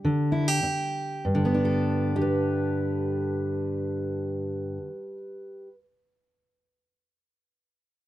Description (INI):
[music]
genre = folk, solo fingerstyle acoustic guitar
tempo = 100 BPM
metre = 4/4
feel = rubato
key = G major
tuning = A4 = 440 Hz
[part]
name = fingerpicked steel-string acoustic guitar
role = solo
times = 0.0-5.7 s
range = G2 to B4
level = -25 LUFS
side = equal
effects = none
[sound]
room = moderate small room reverb, RT60 0.6 s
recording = dark, warm production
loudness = -24 LUFS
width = side -14 dB against mid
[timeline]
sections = 0.0-1.2 A section; 1.2-6.0 B section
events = slowing down 0.0-1.2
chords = 0.0 G5; 1.2 Gadd9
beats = 0.04 0.63 | 1.24 1.85 2.45 3.05 | 3.64 4.23 4.82 5.43